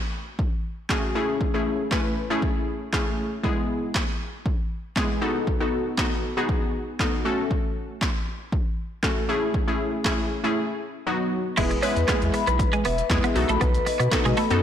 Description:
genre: dance-pop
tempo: 118 BPM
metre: 4/4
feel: straight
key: E major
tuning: A4 = 440 Hz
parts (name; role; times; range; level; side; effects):
- punchy analog drum machine; drums; 0.4-14.6 s; crash cymbal, handclaps, hi-hat, kick drum, shaker, snare drum; -26 LUFS; equal; none
- glassy wavetable pluck; accompaniment; 0.9-14.6 s; F#3 to B4; -25 LUFS; left 1 dB; chorus, sidechain pumping
- vibraphone with medium hard mallets; arpeggios; 11.6-14.5 s; B4 to B5; -27 LUFS; left 6 dB; sidechain pumping, ping-pong delay
- twelve-string electric guitar; riff; 11.6-14.5 s; G#3 to E4; -26 LUFS; right 4 dB; analog chorus
- saturated sub bass; bass; 11.6-14.6 s; E1 to B2; -25 LUFS; right 1 dB; sidechain pumping
room: light reverb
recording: blown-out, overdriven recording, overdrive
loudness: -22 LUFS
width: side -9 dB against mid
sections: 0.0-11.6 A section; 11.6-14.6 B section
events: break 10.6-11.6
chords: 0.0 F#m; 1.2 Amaj7; 3.4 E; 5.2 B7; 7.3 F#m; 9.3 Amaj7; 10.6 B; 11.6 E; 13.4 B7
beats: 0.39 0.90 | 1.41 1.92 2.42 2.93 | 3.44 3.95 4.46 4.97 | 5.47 5.98 6.49 7.00 | 7.51 8.02 8.53 9.03 | 9.54 10.05 10.56 11.07 | 11.58 12.08 12.59 13.10 | 13.61 14.12 14.63

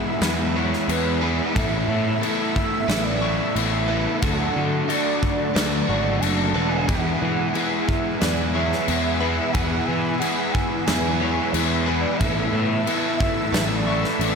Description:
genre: rock, shoegaze and dream pop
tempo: 90 BPM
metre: 4/4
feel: straight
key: E mixolydian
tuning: A4 = 440 Hz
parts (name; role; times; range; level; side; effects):
- warm velvety synth lead; melody; 0.0-14.4 s; B4 to A5; -29 LUFS; right 3 dB; chorus, tape echo
- lush unison pad; sustained chords; 0.0-14.4 s; G#4 to E6; -32 LUFS; equal; chorus
- direct-recorded clean electric guitar; arpeggios; 0.0-14.4 s; G#4 to C#6; -34 LUFS; left 10 dB; ensemble chorus, tape echo
- crunchy overdriven guitar; riff; 0.0-14.4 s; E2 to F#4; -26 LUFS; left 14 dB; lush chorus
- overdriven electric guitar; riff; 0.0-14.4 s; D3 to A4; -26 LUFS; right 12 dB; reverse reverb
- fuzz picked electric bass; bass; 0.2-14.4 s; E1 to E3; -25 LUFS; equal; overdrive
- big rock drum kit; drums; 0.2-14.4 s; crash cymbal, kick drum, snare drum; -26 LUFS; left 1 dB; none
room: light reverb, studio reverb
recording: none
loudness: -19 LUFS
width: side -5 dB against mid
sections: 0.0-14.4 A section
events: none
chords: 0.0 Eadd9; 1.6 Asus2; 4.2 D; 6.9 Eadd9; 12.2 Asus2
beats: 0.23 0.89 | 1.56 2.22 2.89 3.56 | 4.22 4.89 5.55 6.22 | 6.88 7.55 8.21 8.88 | 9.55 10.21 10.88 11.54 | 12.21 12.87 13.54 14.20

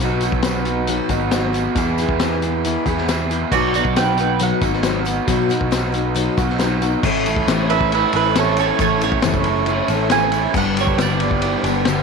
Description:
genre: folk rock and heartland rock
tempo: 137 BPM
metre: 4/4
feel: straight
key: unclear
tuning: A4 = 437 Hz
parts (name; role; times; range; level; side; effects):
- picked steel-string acoustic guitar; accompaniment; 0.0-12.0 s; G2 to A4; -22 LUFS; left 12 dB; none
- mellow tonewheel organ; sustained chords; 0.0-12.0 s; F#4 to C#6; -29 LUFS; right 1 dB; slow rotary speaker
- raw garage guitar; riff; 0.0-12.0 s; E2 to G#4; -23 LUFS; right 13 dB; overdrive
- picked electric bass; bass; 0.0-12.0 s; F#1 to B2; -24 LUFS; right 1 dB; none
- tambourine; percussion; 0.0-12.0 s; none; -39 LUFS; right 17 dB; none
- vintage drum kit; drums; 0.2-12.0 s; crash cymbal, hi-hat, kick drum, ride cymbal, snare drum; -23 LUFS; left 4 dB; none
- mandolin; second line; 3.5-4.6, 7.7-11.9 s; F#4 to G#5; -20 LUFS; right 13 dB; none
room: light reverb, studio ambience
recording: 1960s-style stereo with parts hard left and right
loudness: -16 LUFS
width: side -5 dB against mid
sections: 0.0-7.0 A section; 7.0-12.0 B section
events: mandolin solo 7.0-12.0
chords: 0.0 B; 1.8 E; 3.5 B; 7.0 A; 10.5 G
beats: | 0.01 0.45 0.89 1.33 | 1.77 2.21 2.65 3.09 | 3.53 3.97 4.41 4.85 | 5.29 5.72 6.16 6.60 | 7.04 7.48 7.92 8.36 | 8.79 9.23 9.67 10.11 | 10.55 10.99 11.43 11.86

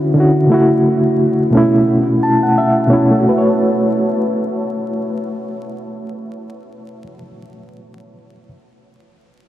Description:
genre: hip hop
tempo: 88 BPM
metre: 4/4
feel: swing 59% on 16ths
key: A major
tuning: A4 = 443 Hz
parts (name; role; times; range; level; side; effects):
- bright reed electric piano; solo; 0.0-8.5 s; B2 to A5; -13 LUFS; equal; fast tremolo, low-pass filter, tape echo
room: wet huge ambient reverb, RT60 8.9 s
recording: dreamy mix soaked in reverb, vinyl crackle, lossy compression artefacts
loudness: -12 LUFS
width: side -13 dB against mid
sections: 0.0-3.2 A section; 3.2-6.0 B section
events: none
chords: 0.0 Dmaj9; 0.5 F#m7/C#; 1.5 B9sus4; 3.2 A69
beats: | 0.52 1.20 1.88 2.56 | 3.24 3.92 4.61 5.29

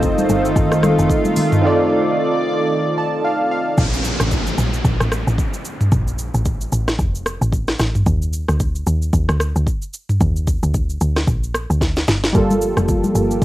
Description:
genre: amapiano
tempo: 112 BPM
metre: 4/4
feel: swing 58% on 16ths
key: Bb major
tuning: A4 = 440 Hz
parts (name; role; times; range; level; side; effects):
- warm analog keys; accompaniment; 0.0-3.8, 12.3-13.4 s; G3 to A5; -19 LUFS; right 1 dB; chorus, cassette tape
- lush unison pad; sustained chords; 0.0-3.8, 12.3-13.4 s; Eb3 to D5; -19 LUFS; equal; chorus, sidechain pumping, cassette tape
- woody log drum bass; bass; 0.0-13.4 s; F1 to Eb2; -19 LUFS; equal; none
- afro-pop drum kit; drums; 0.0-13.4 s; hi-hat, kick drum, rim click, shaker, snare drum, toms; -20 LUFS; equal; cassette tape
- congas; percussion; 0.0-1.5, 12.3-13.4 s; none; -23 LUFS; left 2 dB; none
- downlifter; sound effects; 3.8-8.1 s; none; -26 LUFS; equal; none
room: light reverb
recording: home recording on cassette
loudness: -16 LUFS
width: side -15 dB against mid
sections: 0.0-3.8 A section; 3.8-13.4 B section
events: drop 0.0-3.8; break 1.6-3.8; synth keys fill 2.7-3.8; drum fill 11.8-12.3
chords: 0.0 F7; 3.8 Bb5; 8.1 Eb5; 12.1 Gm9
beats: 0.03 0.56 1.10 | 1.64 2.17 2.71 3.24 | 3.78 4.31 4.85 5.38 | 5.92 6.46 6.99 7.53 | 8.06 8.60 9.13 9.67 | 10.21 10.74 11.28 11.81 | 12.35 12.88 13.42

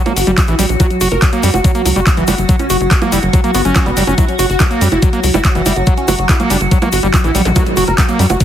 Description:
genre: psychedelic trance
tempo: 142 BPM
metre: 4/4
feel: straight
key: unclear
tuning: A4 = 439 Hz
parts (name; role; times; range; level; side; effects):
- evolving wavetable pad; sustained chords; 0.0-8.4 s; F#4; -21 LUFS; right 1 dB; chorus, built-in reverb, phaser, sidechain pumping
- screaming distorted acid line; riff; 0.0-8.4 s; E3 to F#4; -19 LUFS; right 1 dB; distortion, chorus, auto-pan, sidechain pumping, ping-pong delay
- wide unison lead; melody; 0.1-8.4 s; F#3 to A#4; -19 LUFS; equal; phaser, sidechain pumping, dub echo
- drum and bass drum kit; drums; 0.1-8.4 s; bongos, handclaps, hi-hat; -18 LUFS; right 1 dB; overdrive
- egg shaker; percussion; 0.1-8.4 s; none; -27 LUFS; left 5 dB; none
- tight sequencer bass; bass; 0.2-8.4 s; F#1 to F#2; -16 LUFS; equal; tube saturation
- electronic kick drum; drums; 0.4-8.4 s; none; -12 LUFS; equal; overdrive
- zap; sound effects; 7.5-7.6 s; none; -22 LUFS; equal; none
room: little or no reverb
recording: heavily compressed radio sound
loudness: -10 LUFS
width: side -10 dB against mid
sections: 0.0-8.4 A section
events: none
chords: 0.0 F#5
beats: 0.38 | 0.80 1.22 1.64 2.07 | 2.49 2.91 3.33 3.76 | 4.18 4.60 5.02 5.45 | 5.87 6.29 6.71 7.14 | 7.56 7.98 8.40

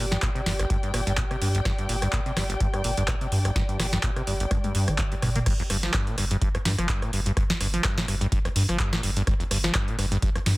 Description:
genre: acid house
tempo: 126 BPM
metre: 4/4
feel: swing 55% on 16ths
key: G minor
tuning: A4 = 436 Hz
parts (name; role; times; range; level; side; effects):
- liquid acid bass; riff; 0.0-10.5 s; G1 to Bb3; -28 LUFS; equal; chorus, tape echo
- round analog bass; bass; 0.0-10.6 s; G1 to G2; -28 LUFS; equal; sidechain pumping
- dark studio string section; texture; 0.0-5.5 s; G4 to G5; -33 LUFS; equal; sidechain pumping
- booming analog drum machine; drums; 0.1-10.6 s; crash cymbal, handclaps, hi-hat, rim click, snare drum, toms; -28 LUFS; equal; none
- electronic kick drum; drums; 0.2-10.3 s; none; -27 LUFS; equal; none
room: light reverb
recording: dense, heavily limited modern master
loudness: -23 LUFS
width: side -20 dB against mid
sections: 0.0-5.5 A section; 5.5-10.6 B section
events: drum fill 4.5-5.5; drop 5.5-10.6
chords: 0.0 Gm; 5.5 G7(no3)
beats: 0.23 0.70 1.18 | 1.65 2.13 2.61 3.08 | 3.56 4.03 4.51 4.99 | 5.46 5.94 6.42 6.89 | 7.37 7.84 8.32 8.80 | 9.27 9.75 10.22

